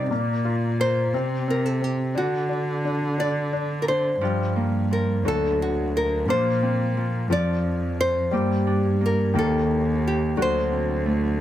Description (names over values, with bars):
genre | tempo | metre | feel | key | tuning
acoustic folk-pop ballad | 58 BPM (dotted quarters) | 6/8 | straight | unclear | A4 = 439 Hz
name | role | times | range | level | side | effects
nylon-string guitar | melody | 0.0-11.1 s | F#4 to D5 | -26 LUFS | equal | none
felt-muted upright piano | accompaniment | 0.0-11.4 s | C3 to Bb4 | -28 LUFS | left 4 dB | none
warm cello | bass | 0.0-11.4 s | D2 to D3 | -25 LUFS | right 1 dB | none
Celtic harp | arpeggios | 4.2-11.4 s | F3 to G4 | -27 LUFS | right 1 dB | none
room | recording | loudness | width
light reverb | close, detailed microphones | -21 LUFS | side -12 dB against mid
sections
0.0-4.2 A section; 4.2-11.4 A section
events
none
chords
0.1 Bb; 1.1 C5; 2.2 D; 4.2 Gm7; 5.2 D; 6.3 Bbadd9; 7.3 Dm7/F; 8.3 Gm; 9.3 Eb5; 10.4 D7